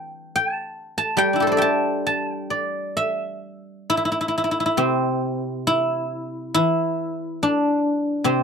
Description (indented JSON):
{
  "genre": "chinese traditional, Chinese solo plucked strings",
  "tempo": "62-73 BPM",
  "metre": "4/4",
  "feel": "rubato",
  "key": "E jue mode",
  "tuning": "A4 = 439 Hz",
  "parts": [
    { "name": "guzheng", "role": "solo", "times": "0.0-8.4 s", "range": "C3 to A5", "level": "-20 LUFS", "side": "equal", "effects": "none" }
  ],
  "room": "light reverb",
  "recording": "dark, warm production",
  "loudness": "-20 LUFS",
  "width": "side -6 dB against mid",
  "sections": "0.0-4.8 A section; 4.8-8.4 B section",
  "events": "none",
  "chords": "none",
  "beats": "0.33 | 1.17 2.03 2.92 3.86 | 4.79 5.67 6.55 7.41 | 8.26"
}